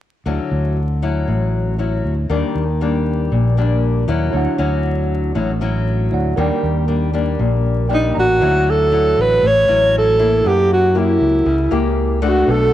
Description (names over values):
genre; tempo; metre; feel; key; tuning
bossa nova; 118 BPM; 4/4; straight; D major; A4 = 439 Hz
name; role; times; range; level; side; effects
nylon-string guitar; accompaniment; 0.3-12.7 s; A2 to G4; -20 LUFS; left 4 dB; none
fingered electric bass; bass; 0.3-12.7 s; A1 to F#2; -19 LUFS; equal; none
tine electric piano; accompaniment; 4.3-12.7 s; D4 to Bb5; -26 LUFS; right 8 dB; analog chorus
breathy alto saxophone; melody; 7.9-12.7 s; Eb4 to C#5; -14 LUFS; right 1 dB; none
room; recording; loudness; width
moderate echo chamber reverb, RT60 2.1 s; 1960s-style stereo, vinyl crackle; -14 LUFS; side -12 dB against mid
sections
0.3-8.4 A section; 8.4-12.7 B section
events
tine electric piano fill 7.7-8.4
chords
0.3 Dmaj9; 2.3 Ebmaj7; 4.3 Dmaj9; 6.4 Ebmaj7; 8.4 Dmaj9; 10.4 F#7b9